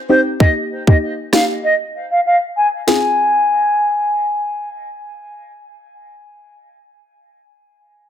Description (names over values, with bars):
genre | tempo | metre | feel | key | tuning
dancehall | 97 BPM | 4/4 | straight | F minor | A4 = 440 Hz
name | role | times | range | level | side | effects
bright baroque flute | melody | 0.1-4.7 s | C5 to Ab5 | -16 LUFS | equal | low-pass filter, tape echo
soft round pluck | accompaniment | 0.1-6.5 s | Bb3 to Ab4 | -18 LUFS | left 1 dB | chorus, sidechain pumping, low-pass filter
island pop drum kit | drums | 0.4-3.0 s | kick drum, rim click, snare drum | -13 LUFS | equal | none
room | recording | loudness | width
light reverb | dense, heavily limited modern master | -13 LUFS | side -10 dB against mid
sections
0.0-2.9 A section; 2.9-5.4 B section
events
filter sweep 0.0-2.9; drums muted 1.6-2.9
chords
0.4 Eb; 1.6 N.C.; 2.9 Fm